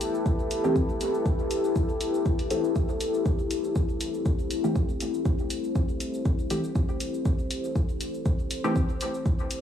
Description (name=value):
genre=dub techno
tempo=120 BPM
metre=4/4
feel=swing 54% on 16ths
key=A minor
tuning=A4 = 442 Hz
part: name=deep dark ambient pad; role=sustained chords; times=0.0-9.6 s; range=E4 to C5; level=-29 LUFS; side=left 2 dB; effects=chorus, built-in reverb, sidechain pumping, cassette tape
part: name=electronic hi-hat and cabasa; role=drums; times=0.0-9.6 s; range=none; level=-37 LUFS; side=equal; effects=cassette tape
part: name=electronic kick drum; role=drums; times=0.3-9.4 s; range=none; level=-26 LUFS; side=equal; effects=cassette tape
part: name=filtered dub chord stab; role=stabs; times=0.6-8.8 s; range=E3 to G4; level=-30 LUFS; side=right 1 dB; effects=chorus, phaser, sidechain pumping, cassette tape, dub echo
room=light reverb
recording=home recording on cassette, studio reverb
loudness=-24 LUFS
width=side -9 dB against mid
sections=0.0-9.6 A section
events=none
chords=0.0 Am7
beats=0.26 0.76 | 1.26 1.76 2.26 2.76 | 3.26 3.76 4.26 4.76 | 5.26 5.76 6.26 6.76 | 7.26 7.76 8.26 8.76 | 9.26